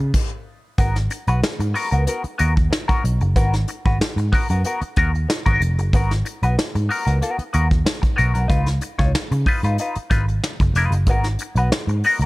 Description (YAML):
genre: funk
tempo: 93 BPM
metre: 4/4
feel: straight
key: G# dorian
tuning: A4 = 440 Hz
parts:
  - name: clean electric guitar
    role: accompaniment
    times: 0.0-12.3 s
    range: B3 to C#5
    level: -22 LUFS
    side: left 2 dB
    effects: wah
  - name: vintage muted picked electric bass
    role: bass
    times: 0.0-12.3 s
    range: E#1 to C#3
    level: -19 LUFS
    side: equal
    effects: none
  - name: soft brush drum kit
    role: drums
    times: 0.1-12.3 s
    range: crash cymbal, hi-hat, kick drum, snare drum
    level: -21 LUFS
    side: equal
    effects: none
room: little or no reverb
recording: none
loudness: -17 LUFS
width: side -21 dB against mid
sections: 0.8-12.3 A section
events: stop 0.1-0.8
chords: 0.0 N.C.; 0.8 G#m9; 8.5 C#9; 11.1 G#m9